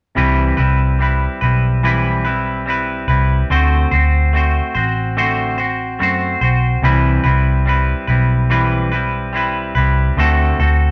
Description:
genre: indie pop, bedroom pop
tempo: 72 BPM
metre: 4/4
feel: straight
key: C lydian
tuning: A4 = 440 Hz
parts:
  - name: clean electric guitar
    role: accompaniment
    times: 0.2-10.9 s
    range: C3 to C5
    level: -19 LUFS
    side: equal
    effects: warbly pitch drift
  - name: vintage muted fingered electric bass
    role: bass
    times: 0.2-10.9 s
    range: A1 to F#2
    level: -18 LUFS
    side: equal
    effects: none
room: light reverb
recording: band playing live in one room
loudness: -16 LUFS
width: mono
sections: 0.2-10.9 A section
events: none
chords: 0.2 Cmaj7; 3.5 D7; 6.8 Cmaj7; 10.2 D7

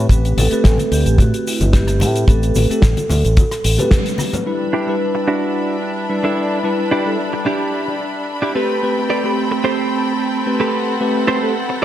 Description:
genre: nu-disco, nu disco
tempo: 110 BPM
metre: 4/4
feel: straight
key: A dorian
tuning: A4 = 440 Hz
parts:
  - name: bell-like tine electric piano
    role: accompaniment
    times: 0.0-11.5 s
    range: G3 to B5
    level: -20 LUFS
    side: equal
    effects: phaser, sidechain pumping, diffuse ambient delay
  - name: fingered electric bass with an envelope filter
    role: bass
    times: 0.0-3.8 s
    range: G1 to A2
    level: -16 LUFS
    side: equal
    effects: none
  - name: vibraphone with medium hard mallets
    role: melody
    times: 0.1-3.9 s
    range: E4 to B4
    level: -24 LUFS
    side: right 1 dB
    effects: diffuse ambient delay
  - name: kick drum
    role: drums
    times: 0.1-4.0 s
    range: none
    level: -13 LUFS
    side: equal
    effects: none
  - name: warm soul drum kit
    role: drums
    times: 0.1-10.7 s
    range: hi-hat, rim click, shaker, snare drum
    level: -23 LUFS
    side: left 1 dB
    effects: low-pass filter on hats, low-pass filter on snare, low-pass filter on perc, low-pass filter on room
  - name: congas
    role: percussion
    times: 0.4-4.4 s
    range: none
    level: -26 LUFS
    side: left 2 dB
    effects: none
  - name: clear studio string section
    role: sustained chords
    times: 4.5-11.8 s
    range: G3 to B5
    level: -22 LUFS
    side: left 1 dB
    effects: sidechain pumping
  - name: direct-recorded clean electric guitar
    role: riff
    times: 4.7-11.8 s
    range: C4 to D5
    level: -21 LUFS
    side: right 2 dB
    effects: wide subtle chorus, low-pass filter, diffuse ambient delay
room: moderate plate reverb, RT60 1.8 s, small room ambience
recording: dreamy mix soaked in reverb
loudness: -15 LUFS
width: side -12 dB against mid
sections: 0.0-4.5 A section; 4.5-11.8 B section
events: band accent 3.9; filter sweep on clean electric guitar 4.5-11.8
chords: 0.0 Am9; 4.5 Em7; 8.6 Am9

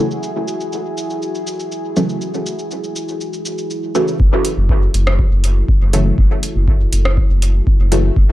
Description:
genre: dub techno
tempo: 121 BPM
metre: 4/4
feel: straight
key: F# minor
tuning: A4 = 440 Hz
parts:
  - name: deep dark ambient pad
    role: sustained chords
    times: 0.0-8.3 s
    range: E4 to A4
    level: -25 LUFS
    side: equal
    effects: chorus, built-in reverb, sidechain pumping
  - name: filtered dub chord stab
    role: stabs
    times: 0.0-8.1 s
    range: C#3 to A3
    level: -20 LUFS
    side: equal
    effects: chorus, phaser, sidechain pumping, dub echo
  - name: booming analog drum machine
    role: drums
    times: 0.1-8.0 s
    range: cabasa, hi-hat, rim click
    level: -25 LUFS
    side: equal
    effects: low-pass filter on perc, low-pass filter on hats, low-pass filter on snare, low-pass filter on room
  - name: round analog bass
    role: bass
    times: 4.2-8.3 s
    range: F#1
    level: -15 LUFS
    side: equal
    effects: tube saturation, sidechain pumping
  - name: electronic kick drum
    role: drums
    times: 4.2-8.3 s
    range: none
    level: -14 LUFS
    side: equal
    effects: none
room: little or no reverb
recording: dry, gritty hardware recording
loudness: -14 LUFS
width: side -15 dB against mid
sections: 0.0-4.2 A section; 4.2-8.3 B section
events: filter sweep on synth stab 0.0-4.2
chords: 0.0 F#m7

